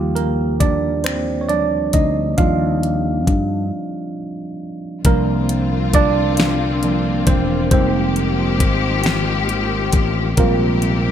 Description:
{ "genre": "slow six-eight R&B", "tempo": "45 BPM (dotted quarters)", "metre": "6/8", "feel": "straight", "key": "unclear", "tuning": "A4 = 440 Hz", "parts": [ { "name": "tine electric piano", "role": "accompaniment", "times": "0.0-11.1 s", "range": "F3 to F5", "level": "-20 LUFS", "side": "right 3 dB", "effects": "wide subtle chorus" }, { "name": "fretless electric bass", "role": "bass", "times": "0.0-11.1 s", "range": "E1 to G2", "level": "-21 LUFS", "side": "left 1 dB", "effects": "analog chorus" }, { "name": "smooth R&B drum kit", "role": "drums", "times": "0.2-11.0 s", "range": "finger snaps, hi-hat, kick drum, snare drum", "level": "-17 LUFS", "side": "left 1 dB", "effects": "none" }, { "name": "warm studio string section", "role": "sustained chords", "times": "5.0-11.1 s", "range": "C3 to G4", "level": "-22 LUFS", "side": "left 5 dB", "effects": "none" } ], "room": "light reverb, digital ambience", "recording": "bright 1980s-style digital production", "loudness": "-15 LUFS", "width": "side -9 dB against mid", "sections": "0.0-5.0 A section; 5.0-11.1 B section", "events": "tine electric piano solo 0.0-5.0, 5.0-11.1; break 3.7-5.0", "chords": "0.0 Ebmaj9; 5.0 C9sus4; 7.7 Fm11; 10.4 Bb7sus2" }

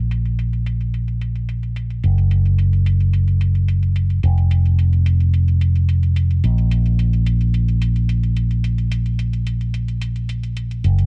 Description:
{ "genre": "nu-disco, nu disco", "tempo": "109 BPM", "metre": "4/4", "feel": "straight", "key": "unclear", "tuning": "A4 = 440 Hz", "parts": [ { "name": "fingered electric bass with an envelope filter", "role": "bass", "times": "0.0-11.1 s", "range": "F1 to Bb1", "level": "-18 LUFS", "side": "equal", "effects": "none" }, { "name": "electronic hi-hat", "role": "drums", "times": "0.1-11.1 s", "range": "none", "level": "-40 LUFS", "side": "equal", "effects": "low-pass filter on snare, low-pass filter on hats, low-pass filter on toms, low-pass filter on room" } ], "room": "little or no reverb", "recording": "bright 1980s-style digital production", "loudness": "-18 LUFS", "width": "mono", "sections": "0.0-11.1 A section", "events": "none", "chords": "none" }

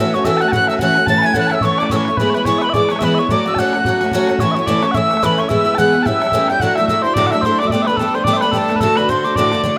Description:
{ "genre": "celtic folk, Celtic reel", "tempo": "217 BPM", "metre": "4/4", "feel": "swing 57% on 8ths", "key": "D mixolydian from 6.6 s", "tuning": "A4 = 440 Hz", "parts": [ { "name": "bright wooden whistle", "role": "melody", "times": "0.0-9.6 s", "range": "A5 to A6", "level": "-22 LUFS", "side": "equal", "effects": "none" }, { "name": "mellow small bagpipes", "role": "second line", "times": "0.0-9.8 s", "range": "A4 to B5", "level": "-21 LUFS", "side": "equal", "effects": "none" }, { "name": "picked twelve-string acoustic guitar", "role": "accompaniment", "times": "0.0-9.8 s", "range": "D2 to F#4", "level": "-19 LUFS", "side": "equal", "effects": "none" }, { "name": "bodhran", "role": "percussion", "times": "0.2-9.7 s", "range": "none", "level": "-27 LUFS", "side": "equal", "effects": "none" } ], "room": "moderate lush hall reverb, RT60 2.4 s", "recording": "rough home demo mix", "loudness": "-16 LUFS", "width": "mono", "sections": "0.0-6.6 A section; 6.6-9.8 B section", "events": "none", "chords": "0.0 F#m7/A; 1.1 A; 2.2 E; 3.3 F#m; 4.4 A; 5.5 E; 6.1 A7; 6.6 Dadd9; 7.7 Gadd9; 8.8 D" }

